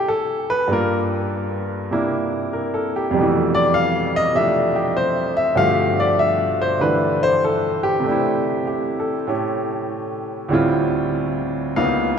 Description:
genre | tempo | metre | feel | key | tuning
solo jazz | 98 BPM | 4/4 | swing 67% on 8ths, rubato | C major | A4 = 440 Hz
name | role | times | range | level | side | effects
clear grand piano | solo | 0.0-12.2 s | Db2 to F5 | -18 LUFS | equal | none
room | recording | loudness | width
wet cathedral reverb, RT60 6.0 s | recorded in a church or concert hall | -18 LUFS | side -7 dB against mid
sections
0.0-12.2 A section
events
grand piano solo 0.0-12.2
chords
0.0 C69; 0.7 Gm7; 1.9 C9; 3.1 Fmaj9#11; 5.6 G13; 8.0 C69; 9.3 A7; 10.5 Dm11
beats
0.08 | 0.70 1.31 1.92 2.53 | 3.14 3.74 4.35 4.96 | 5.57 6.19 6.81 7.43 | 8.05 8.67 9.29 9.90 | 10.52 11.14 11.76

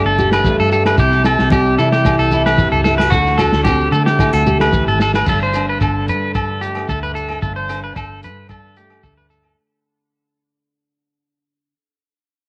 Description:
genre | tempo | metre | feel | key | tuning
highlife guitar band | 112 BPM | 4/4 | straight | G major | A4 = 435 Hz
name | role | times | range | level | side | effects
nylon-string guitar | accompaniment | 0.0-11.7 s | G2 to G4 | -22 LUFS | equal | none
electric guitar at the edge of break-up | arpeggios | 0.0-9.6 s | F#4 to C5 | -20 LUFS | equal | tape echo
vintage muted fingered electric bass | bass | 0.0-9.5 s | G1 to D3 | -22 LUFS | equal | none
congas | percussion | 0.2-4.9 s | none | -26 LUFS | equal | none
shekere | percussion | 0.2-9.4 s | none | -27 LUFS | equal | none
vintage drum kit | drums | 0.3-9.6 s | crash cymbal, hi-hat, kick drum, rim click, snare drum | -23 LUFS | equal | cassette tape
agogo bells | percussion | 0.3-9.6 s | none | -28 LUFS | equal | none
room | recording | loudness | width
light reverb | home recording on cassette | -15 LUFS | mono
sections
0.0-5.3 A section; 5.3-9.6 B section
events
fade-out 5.3-9.6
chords
0.0 Gsus2; 1.0 C; 3.1 D7; 5.3 Gsus2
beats
0.46 | 0.99 1.53 2.06 2.60 | 3.13 3.67 4.20 4.74 | 5.27 5.81 6.35 6.88 | 7.42 7.96 8.50 9.04

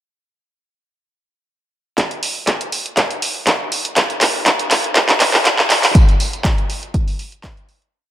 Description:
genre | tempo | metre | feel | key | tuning
house | 121 BPM | 4/4 | swing 53% on 16ths | none | none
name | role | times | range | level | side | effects
electronic kick drum | drums | 2.0-7.5 s | none | -16 LUFS | equal | high-pass filter on kick, high-pass filter on room
punchy analog drum machine | drums | 2.0-7.9 s | handclaps, hi-hat | -15 LUFS | equal | sidechain pumping on hats
tambourine | percussion | 6.0-7.9 s | none | -32 LUFS | right 1 dB | none
room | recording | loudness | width
moderate plate reverb, RT60 2.3 s | high-pass filter | -14 LUFS | side -12 dB against mid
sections
2.0-5.9 build; 5.9-7.9 outro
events
build-up 2.0-5.9; drum fill 2.0-5.9; fade-out 5.9-7.9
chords
none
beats
| 1.98 2.48 2.97 3.47 | 3.97 4.46 4.96 5.45 | 5.95 6.45 6.94 7.44

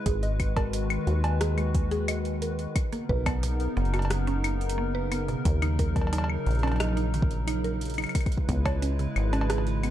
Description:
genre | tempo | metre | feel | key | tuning
IDM | 89 BPM | 4/4 | straight | Eb phrygian | A4 = 440 Hz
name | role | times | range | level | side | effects
hollow soft pad | sustained chords | 0.0-9.9 s | C#3 to Cb5 | -32 LUFS | equal | chorus
mallet-like synth pluck | arpeggios | 0.1-9.9 s | B2 to Ab5 | -34 LUFS | right 3 dB | chorus, ping-pong delay
deep acid bass | bass | 0.1-9.9 s | F#1 to Eb2 | -27 LUFS | equal | none
electro analog drum machine | drums | 0.1-9.9 s | claves, cowbell, hi-hat, rim click | -34 LUFS | left 2 dB | none
electronic kick drum | drums | 0.1-8.8 s | none | -27 LUFS | equal | overdrive
room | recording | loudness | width
light reverb, digital ambience | dark, warm production | -24 LUFS | side -12 dB against mid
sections
0.0-9.9 A section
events
none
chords
0.1 Abm7; 2.8 Bmaj9; 5.5 Ebm7; 8.2 Dbm7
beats
| 0.06 0.73 1.41 2.08 | 2.76 3.43 4.11 4.78 | 5.45 6.13 6.80 7.47 | 8.15 8.82 9.50

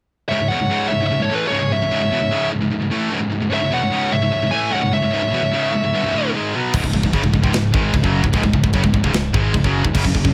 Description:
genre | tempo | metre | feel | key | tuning
heavy metal | 149 BPM | 4/4 | straight | C# minor | A4 = 440 Hz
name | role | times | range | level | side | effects
high-gain lead guitar | melody | 0.3-6.3 s | B4 to G#5 | -23 LUFS | equal | distortion
high-gain lead guitar | second line | 0.3-6.3 s | G#4 to E5 | -31 LUFS | equal | distortion
distorted electric guitar | riff | 0.3-10.3 s | C#2 to B3 | -25 LUFS | equal | overdrive
scooped high-gain guitar | riff | 0.3-10.3 s | C#2 to B3 | -24 LUFS | equal | distortion
biting overdriven guitar | riff | 6.7-10.3 s | C#2 to G#3 | -26 LUFS | equal | none
modern bright picked electric bass | bass | 6.7-10.3 s | C#1 to G#1 | -22 LUFS | equal | none
tight metal drum kit | drums | 6.7-10.3 s | china cymbal, crash cymbal, kick drum, snare drum | -22 LUFS | equal | none
room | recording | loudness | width
light reverb | none | -18 LUFS | mono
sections
0.3-6.7 A section; 6.7-10.3 B section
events
none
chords
0.3 C#m; 6.7 C#5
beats
| 0.30 0.71 1.11 1.51 | 1.91 2.32 2.72 3.12 | 3.52 3.93 4.33 4.73 | 5.13 5.54 5.94 6.34 | 6.74 7.14 7.54 7.95 | 8.35 8.75 9.15 9.55 | 9.95

